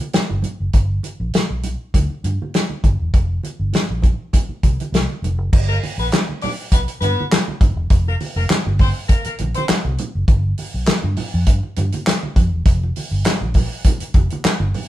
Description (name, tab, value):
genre	funk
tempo	101 BPM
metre	4/4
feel	straight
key	unclear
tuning	A4 = 436 Hz
part	warm soul drum kit	drums	0.0-14.9 s	crash cymbal, handclaps, hi-hat, kick drum, snare drum	-17 LUFS	equal	none
part	congas	percussion	0.0-14.9 s	none	-29 LUFS	right 4 dB	none
part	vintage muted fingered electric bass	bass	0.1-14.7 s	E1 to G2	-21 LUFS	equal	none
part	clear horn section	second line	5.7-9.6 s	Bb3 to D5	-25 LUFS	left 3 dB	none
room	light reverb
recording	band playing live in one room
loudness	-16 LUFS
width	side -14 dB against mid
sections	0.0-5.5 A section; 5.5-14.9 B section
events	none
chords	0.0 N.C.; 0.7 G; 3.1 Fsus4; 5.5 G; 7.9 Fsus24; 10.3 G7(no3); 12.7 Fsus24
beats	0.14 | 0.74 1.34 1.94 2.54 | 3.14 3.73 4.33 4.93 | 5.52 6.12 6.71 7.31 | 7.91 8.50 9.09 9.69 | 10.28 10.88 11.47 12.06 | 12.66 13.25 13.85 14.44